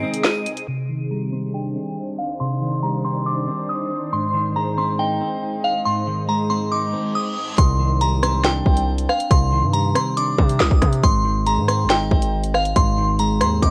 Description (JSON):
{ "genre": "hip hop, drill", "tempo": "139 BPM", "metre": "4/4", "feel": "half-time", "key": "C minor", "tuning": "A4 = 443 Hz", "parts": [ { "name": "glassy synth bell", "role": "melody", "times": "0.0-13.7 s", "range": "F5 to Eb7", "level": "-25 LUFS", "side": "equal", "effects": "chorus, low-pass filter, tape echo" }, { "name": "clean electric guitar", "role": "accompaniment", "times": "0.0-13.7 s", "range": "Ab2 to Eb4", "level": "-26 LUFS", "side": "equal", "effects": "low-pass filter" }, { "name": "granular cloud pad", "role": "sustained chords", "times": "0.0-7.5 s", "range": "Eb3 to Eb5", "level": "-34 LUFS", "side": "equal", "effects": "built-in reverb, low-pass filter" }, { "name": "drill drum kit", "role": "drums", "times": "0.1-0.7, 7.6-13.7 s", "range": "hi-hat, kick drum, rim click, snare drum", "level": "-21 LUFS", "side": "equal", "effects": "none" }, { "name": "reverse cymbal", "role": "sound effects", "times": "6.9-7.6 s", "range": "none", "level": "-37 LUFS", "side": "equal", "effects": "none" }, { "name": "distorted 808-style bass", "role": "bass", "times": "7.6-13.7 s", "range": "Ab1 to C3", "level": "-24 LUFS", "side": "equal", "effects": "distortion" } ], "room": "little or no reverb", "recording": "worn, warbling old tape, cassette tape, warbly pitch drift", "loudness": "-20 LUFS", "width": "mono", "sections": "0.7-7.6 A section; 7.6-13.7 B section", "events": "break 0.0-0.7; filter sweep 0.7-7.6; reverse cymbal 6.9-7.6", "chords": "0.0 Ab; 0.7 Cmadd9; 4.1 Ab; 7.6 Cmadd9; 11.0 Ab" }